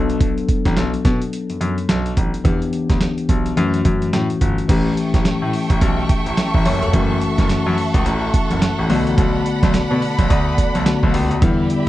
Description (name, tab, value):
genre	R&B, new jack swing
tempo	107 BPM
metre	4/4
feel	swing 60% on 16ths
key	B minor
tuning	A4 = 440 Hz
part	bell-like tine electric piano	accompaniment	0.0-11.9 s	D3 to E5	-21 LUFS	left 3 dB	none
part	clear concert grand piano	bass	0.0-11.6 s	E1 to B2	-21 LUFS	equal	none
part	dusty soul sampler-style drum kit	drums	0.1-11.9 s	crash cymbal, hi-hat, kick drum, snare drum	-18 LUFS	right 1 dB	overdrive, vintage 12-bit sampler grit
part	dark studio string section	sustained chords	4.7-11.9 s	G4 to C#6	-24 LUFS	right 2 dB	none
room	digital ambience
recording	dry, close 1970s-style studio recording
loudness	-15 LUFS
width	side -15 dB against mid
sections	0.0-4.7 A section; 4.7-11.9 B section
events	none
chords	0.0 Bm7; 2.4 Em7; 3.6 F#m7; 4.7 A7; 6.9 F#m7; 8.9 Bm7